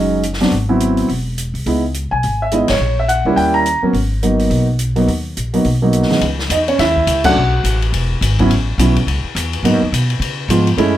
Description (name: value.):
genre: jazz piano trio.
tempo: 210 BPM.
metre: 4/4.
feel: swing 59% on 8ths.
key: G# minor, C# minor from 6.2 s.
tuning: A4 = 441 Hz.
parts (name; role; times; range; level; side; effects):
dark concert grand piano; melody; 0.0-10.9 s; C#2 to A#5; -15 LUFS; right 1 dB; none.
upright bass; bass; 0.0-11.0 s; E1 to C#3; -18 LUFS; equal; none.
open jazz drum kit; drums; 0.2-10.9 s; crash cymbal, hi-hat, kick drum, ride cymbal, snare drum; -23 LUFS; left 3 dB; none.
room: moderate studio reverb, RT60 0.5 s.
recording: none.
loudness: -13 LUFS.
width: side -12 dB against mid.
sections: 0.0-6.2 A section; 6.2-11.0 B section.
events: band accent 2.7, 7.2.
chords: 0.0 B6 (rootless); 0.5 G#7alt; 1.7 C#m9; 2.8 A#dim; 3.4 D#7b9; 3.9 G#m9; 6.2 C#madd9; 7.4 B5; 7.9 E; 8.5 A; 9.6 G#m7; 10.2 C#7.